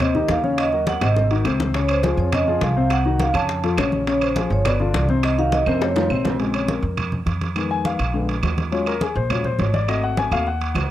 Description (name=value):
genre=Afro-Cuban jazz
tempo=206 BPM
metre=4/4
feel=straight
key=Bb minor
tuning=A4 = 442 Hz
part: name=vibraphone with medium mallets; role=melody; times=0.0-6.2 s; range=C5 to A5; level=-23 LUFS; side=right 3 dB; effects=none
part: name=warm grand piano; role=accompaniment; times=0.0-10.9 s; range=B2 to Ab5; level=-23 LUFS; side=left 4 dB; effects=none
part: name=upright bass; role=bass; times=0.0-10.9 s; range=G1 to F2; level=-23 LUFS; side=right 1 dB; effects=none
part: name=bongos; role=percussion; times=0.0-6.3 s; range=none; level=-29 LUFS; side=left 5 dB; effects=none
part: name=claves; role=percussion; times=0.0-10.9 s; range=none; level=-33 LUFS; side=right 6 dB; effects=none
part: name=congas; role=percussion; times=0.0-10.9 s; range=none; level=-28 LUFS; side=equal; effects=none
part: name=timbales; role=percussion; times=0.0-10.9 s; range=none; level=-29 LUFS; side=right 8 dB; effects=none
room=studio ambience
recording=dry, close 1970s-style studio recording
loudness=-18 LUFS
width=side -12 dB against mid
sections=0.0-6.4 A section; 6.4-10.9 B section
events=drum fill 0.9-1.7, 5.7-6.4; grand piano solo 6.4-10.9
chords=0.0 Abmaj7 (rootless); 0.6 Ebm7; 1.2 Ab7; 1.7 Dbmaj7; 2.9 Cdim; 3.5 Faug; 4.1 Bbm9; 4.7 G7; 5.2 Cdim; 5.8 F5; 6.4 Bbm9; 7.6 Fm7b5; 8.1 Bb7b9; 8.7 Ebm11; 9.9 Ab7b9